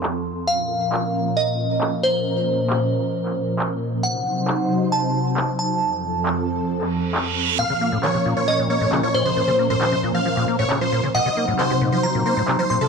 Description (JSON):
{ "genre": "uplifting trance", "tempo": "135 BPM", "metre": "4/4", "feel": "straight", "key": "Bb harmonic minor", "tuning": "A4 = 439 Hz", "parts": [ { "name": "glassy synth bell", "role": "second line", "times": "0.0-12.9 s", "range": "C5 to C6", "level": "-24 LUFS", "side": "equal", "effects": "chorus, digital delay" }, { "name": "analog string pad", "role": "sustained chords", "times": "0.0-12.9 s", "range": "F2 to C5", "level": "-23 LUFS", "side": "right 1 dB", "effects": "ensemble chorus" }, { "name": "electronic handclaps", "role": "drums", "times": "0.0-12.6 s", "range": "none", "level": "-28 LUFS", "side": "equal", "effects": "low-pass filter on snare, low-pass filter on room" }, { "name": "reverse cymbal", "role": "sound effects", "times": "6.9-7.6 s", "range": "none", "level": "-26 LUFS", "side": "right 9 dB", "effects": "none" }, { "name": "big supersaw lead", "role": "melody", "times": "7.6-12.9 s", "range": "A4 to F5", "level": "-23 LUFS", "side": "equal", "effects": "digital delay" }, { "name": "liquid acid bass", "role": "arpeggios", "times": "7.6-12.9 s", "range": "A2 to Bb3", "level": "-24 LUFS", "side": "left 2 dB", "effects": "analog chorus, digital delay" } ], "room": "light reverb", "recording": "dark, warm production", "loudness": "-19 LUFS", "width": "side -5 dB against mid", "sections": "0.0-12.9 A section", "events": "filter sweep on analog synth pad 0.0-12.9; reverse cymbal 6.9-7.6", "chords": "0.5 Bbm; 4.0 Cdim; 5.8 F; 7.6 Bbm; 11.1 Cdim" }